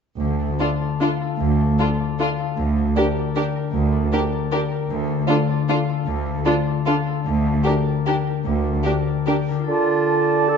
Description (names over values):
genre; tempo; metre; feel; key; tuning
classical, orchestral ballroom waltz; 152 BPM; 3/4; uneven beats, rubato; D minor; A4 = 438 Hz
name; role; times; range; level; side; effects
concert harp; arpeggios; 0.2-10.6 s; D3 to G5; -23 LUFS; left 9 dB; none
rich studio cello section; bass; 0.2-8.8 s; D2; -23 LUFS; right 4 dB; none
rich studio violin section; melody; 0.6-9.3 s; A4 to Bb4; -31 LUFS; equal; none
rich studio violin section; second line; 0.6-9.3 s; F4 to G4; -26 LUFS; left 1 dB; none
warm studio viola section; accompaniment; 0.6-9.3 s; D4; -27 LUFS; right 4 dB; none
clear clarinet; second line; 9.7-10.6 s; F4 to A4; -22 LUFS; right 1 dB; none
clear oboe; second line; 9.7-10.6 s; D5; -26 LUFS; right 5 dB; none
mellow hollow small flute group; second line; 9.7-10.6 s; A5; -23 LUFS; right 6 dB; none
mellow bassoon; accompaniment; 9.7-10.6 s; D3; -20 LUFS; right 6 dB; none
room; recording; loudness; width
moderate scoring stage reverb, RT60 1.7 s; dark, warm production, nothing above 7.8 kHz; -18 LUFS; side -6 dB against mid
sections
0.2-9.7 A section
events
none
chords
0.2 Dm; 2.6 Gm/D; 4.9 Dm; 7.3 Gm/D; 9.7 Dm